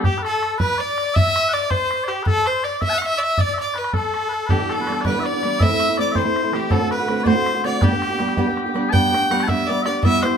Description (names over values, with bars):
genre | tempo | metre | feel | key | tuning
celtic folk, Celtic jig | 108 BPM (dotted quarters) | 6/8 | straight | G major | A4 = 435 Hz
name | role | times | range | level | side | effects
bright fiddle | melody | 0.0-10.4 s | G4 to G5 | -22 LUFS | equal | none
mellow small bagpipes | second line | 0.0-10.4 s | G4 to A5 | -23 LUFS | left 3 dB | none
fingerpicked acoustic archtop guitar | accompaniment | 0.0-0.1, 4.5-10.4 s | D2 to G4 | -21 LUFS | right 3 dB | none
bodhran | percussion | 0.0-10.3 s | none | -23 LUFS | equal | none
room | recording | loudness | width
moderate studio reverb, RT60 0.8 s | minimal, uncompressed stereo recording | -17 LUFS | side -7 dB against mid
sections
0.0-8.9 A section; 8.9-10.4 B section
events
none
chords
0.0 N.C.; 4.5 G6; 5.6 Am; 6.7 D7; 7.8 G